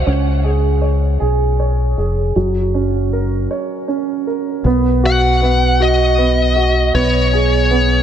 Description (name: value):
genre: six-eight pop ballad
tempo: 52 BPM (dotted quarters)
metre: 6/8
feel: straight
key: B major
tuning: A4 = 441 Hz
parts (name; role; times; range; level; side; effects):
- warm baby grand piano; accompaniment; 0.0-8.0 s; F#3 to C#5; -18 LUFS; right 4 dB; lush chorus
- deep dub fingered electric bass; bass; 0.0-8.0 s; E#1 to C#2; -16 LUFS; left 1 dB; none
- smooth overdriven lead guitar; melody; 5.1-8.0 s; C#5 to F#5; -17 LUFS; left 2 dB; analog delay
room: moderate plate reverb, RT60 3.7 s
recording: dreamy mix soaked in reverb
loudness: -13 LUFS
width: side -9 dB against mid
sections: 0.0-4.7 A section; 4.7-8.0 B section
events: break 3.5-4.7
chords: 0.1 C#; 2.4 F#; 4.7 B; 6.9 G#m/B